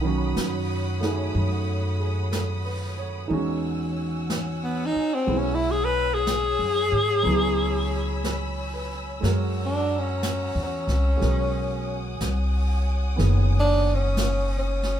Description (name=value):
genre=jazz ballad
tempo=61 BPM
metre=4/4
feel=swing 68% on 8ths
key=unclear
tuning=A4 = 440 Hz
part: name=warm baby grand piano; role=accompaniment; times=0.0-15.0 s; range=D#3 to C#5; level=-30 LUFS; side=right 4 dB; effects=none
part: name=dark symphonic string section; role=sustained chords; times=0.0-15.0 s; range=C#5 to E6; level=-35 LUFS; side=equal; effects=none
part: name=upright bass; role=bass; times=0.0-15.0 s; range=F#1 to G#2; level=-25 LUFS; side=equal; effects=none
part: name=jazz brush drum kit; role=drums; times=0.4-15.0 s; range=brushed snare drum, hi-hat, snare drum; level=-34 LUFS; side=equal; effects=none
part: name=breathy tenor saxophone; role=melody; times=4.6-15.0 s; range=B3 to B4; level=-24 LUFS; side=left 1 dB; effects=none
room=wet studio ambience, RT60 0.5 s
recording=heard from further back in the room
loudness=-22 LUFS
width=side -10 dB against mid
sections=0.0-15.0 A section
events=tenor saxophone solo 0.0-15.0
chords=0.0 B9; 3.3 E69; 7.3 C#m7; 9.2 F#7; 11.2 B69